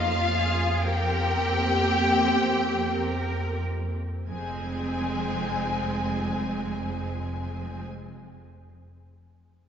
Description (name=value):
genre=classical, slow romantic movement for string orchestra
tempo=free time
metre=none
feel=none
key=F minor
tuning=A4 = 440 Hz
part: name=warm symphonic violin section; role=melody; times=0.0-7.8 s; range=F5 to Ab5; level=-30 LUFS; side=left 3 dB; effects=none
part: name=warm symphonic violin section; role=second line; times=0.0-7.8 s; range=F4 to Ab4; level=-31 LUFS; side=left 3 dB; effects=none
part: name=clear symphonic viola section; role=accompaniment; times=0.0-7.8 s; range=Ab3 to Db4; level=-31 LUFS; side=right 2 dB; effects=none
part: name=warm studio cello section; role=bass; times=0.0-7.8 s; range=F2 to Bb4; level=-34 LUFS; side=right 1 dB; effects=none
part: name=warm studio double bass section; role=bass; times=0.0-7.8 s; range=F1 to F2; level=-31 LUFS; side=right 1 dB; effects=none
room=wet church reverb, RT60 3.1 s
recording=recorded in a church or concert hall, nothing above 7.6 kHz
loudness=-24 LUFS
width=side -8 dB against mid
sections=0.0-4.3 A section; 4.3-8.1 B section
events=slowing down 0.0-4.3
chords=0.0 Bbm/F; 0.8 C5/F; 4.3 Fm